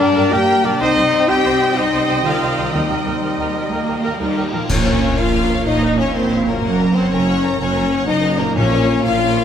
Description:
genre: cinematic, heroic adventure film score.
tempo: 124 BPM (dotted quarters).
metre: 12/8.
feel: straight.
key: unclear.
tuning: A4 = 435 Hz.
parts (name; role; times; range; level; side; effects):
warm symphonic violin section; melody; 0.0-9.4 s; Bb4 to G5; -26 LUFS; left 6 dB; none.
hollow small flute group; second line; 0.0-4.6 s; G5; -31 LUFS; right 1 dB; none.
warm cor anglais; second line; 0.0-4.6 s; Bb4 to C5; -29 LUFS; right 2 dB; none.
warm symphonic violin section; second line; 0.0-9.4 s; Bb4 to Bb5; -28 LUFS; left 2 dB; none.
warm symphonic viola section; accompaniment; 0.0-9.4 s; Bb3 to Eb5; -26 LUFS; right 2 dB; none.
bright trombone section; sustained chords; 0.0-4.5 s; G3 to C4; -27 LUFS; right 5 dB; none.
mellow French horn section; sustained chords; 0.0-9.4 s; Bb3 to G4; -19 LUFS; left 4 dB; none.
concert harp; arpeggios; 0.0-9.4 s; Gb2 to C5; -30 LUFS; left 8 dB; none.
mellow trumpet; stabs; 0.0-4.5 s; D5 to G5; -21 LUFS; equal; none.
rich symphonic double bass section; bass; 0.0-9.4 s; Gb1 to G2; -24 LUFS; right 4 dB; none.
warm symphonic cello section; bass; 0.0-9.4 s; Gb2 to C4; -21 LUFS; right 2 dB; none.
cymbal swell, clash cymbals and concert bass drum; percussion; 0.8-5.3 s; none; -25 LUFS; equal; none.
timpani; percussion; 2.7-5.1, 8.6-9.0 s; Bb2 to Eb3; -26 LUFS; equal; none.
room: wet scoring stage reverb, RT60 1.5 s.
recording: none.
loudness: -14 LUFS.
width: side -8 dB against mid.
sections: 0.0-4.7 A section; 4.7-9.4 B section.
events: band accent 4.7-5.0.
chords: 0.0 Gm; 0.8 Cm; 2.7 Eb; 4.7 Bbm; 6.6 Gb; 8.6 Bbm.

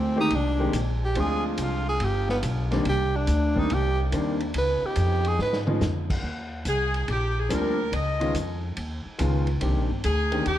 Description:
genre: jazz, big band swing.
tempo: 142 BPM.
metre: 4/4.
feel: swing 67% on 8ths.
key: Eb major.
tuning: A4 = 440 Hz.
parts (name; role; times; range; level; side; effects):
warm tenor saxophone; melody; 0.0-5.6 s; B3 to Cb5; -27 LUFS; right 1 dB; none.
warm saxophone section; sustained chords; 0.0-6.2 s; C3 to G4; -38 LUFS; left 1 dB; none.
upright bass; bass; 0.0-10.6 s; G1 to Ab2; -26 LUFS; equal; none.
clear grand piano; accompaniment; 0.2-10.4 s; Eb3 to G4; -29 LUFS; left 1 dB; none.
vintage drum kit; drums; 0.3-10.6 s; crash cymbal, hi-hat, kick drum, ride cymbal, snare drum, toms; -34 LUFS; equal; none.
edgy saxophone section; melody; 6.7-10.6 s; G4 to Eb5; -27 LUFS; left 1 dB; none.
room: light reverb.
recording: dark, warm production.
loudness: -23 LUFS.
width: side -12 dB against mid.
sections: 0.0-6.2 A section; 6.2-10.6 B section.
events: tenor saxophone solo 0.0-6.2; drum fill 5.4-5.8.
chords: 0.0 Fm11; 1.2 Dm7b5; 2.0 G7b13; 2.9 Cm9; 4.5 Db9; 6.2 Ebmaj13; 7.9 Db9; 9.6 Cm9.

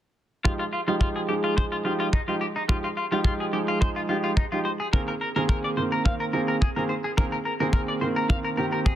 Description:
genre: nu-disco, nu disco.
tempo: 107 BPM.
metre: 4/4.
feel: swing 54% on 16ths.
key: F minor.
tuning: A4 = 437 Hz.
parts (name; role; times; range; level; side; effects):
warm baby grand piano; accompaniment; 0.4-9.0 s; Eb3 to Bb4; -27 LUFS; right 2 dB; low-pass filter, digital delay.
clean electric guitar; riff; 0.4-8.9 s; Eb4 to F5; -29 LUFS; left 2 dB; lush chorus, low-pass filter, digital delay.
kick drum; drums; 0.5-9.0 s; none; -23 LUFS; equal; none.
room: moderate plate reverb, RT60 2.2 s.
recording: dense, heavily limited modern master.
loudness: -23 LUFS.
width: side -11 dB against mid.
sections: 0.4-9.0 A section.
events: filter sweep on grand piano 0.4-9.0.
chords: 0.4 Fm9; 4.7 Bb9sus4.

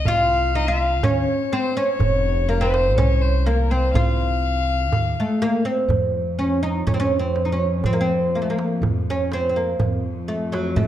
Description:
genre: Arabic maqam ensemble.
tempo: 123 BPM.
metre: 4/4.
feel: straight.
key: F maqam bayati, F maqam hijaz from 5.9 s.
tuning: A4 = 436 Hz.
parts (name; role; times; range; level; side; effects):
oud; melody; 0.0-10.9 s; Gb3+25c to F4; -22 LUFS; right 1 dB; none.
warm violin; second line; 0.0-5.6 s; Bb4 to F5; -25 LUFS; left 6 dB; none.
upright bass; bass; 0.1-10.9 s; F1 to F3; -23 LUFS; equal; none.
darbuka; percussion; 0.1-10.9 s; none; -26 LUFS; right 3 dB; none.
bright studio cello section; drone; 5.9-10.9 s; F2; -30 LUFS; equal; none.
room: moderate recital hall reverb, RT60 1.4 s.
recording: dark, warm production.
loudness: -18 LUFS.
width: side -11 dB against mid.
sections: 0.0-5.9 A section; 5.9-10.9 B section.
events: none.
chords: none.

